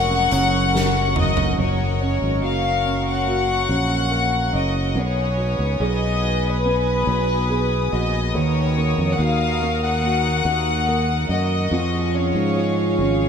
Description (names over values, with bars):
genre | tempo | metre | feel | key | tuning
pop ballad | 71 BPM | 4/4 | straight | F# major | A4 = 439 Hz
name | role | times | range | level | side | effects
warm studio violin section | melody | 0.0-13.3 s | B4 to F#5 | -23 LUFS | left 3 dB | diffuse ambient delay
dark grand piano | accompaniment | 0.0-13.3 s | D#3 to A#4 | -26 LUFS | right 4 dB | lush chorus
warm studio string section | sustained chords | 0.0-13.3 s | F#4 to D#6 | -28 LUFS | left 1 dB | none
electric guitar at the edge of break-up | arpeggios | 0.0-13.3 s | F#2 to A#4 | -30 LUFS | left 4 dB | lush chorus, diffuse ambient delay
fingered electric bass | bass | 0.0-13.3 s | E#1 to G#2 | -22 LUFS | equal | none
huge arena drum kit | drums | 0.3-1.6 s | hi-hat, snare drum, toms | -26 LUFS | right 1 dB | none
room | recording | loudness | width
moderate huge ambient reverb, RT60 8.3 s | dreamy mix soaked in reverb | -18 LUFS | side -7 dB against mid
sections
0.0-1.6 A section; 1.6-13.3 B section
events
drum fill 0.7-1.6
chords
0.0 F#; 5.0 B6; 8.3 D#m; 11.7 C#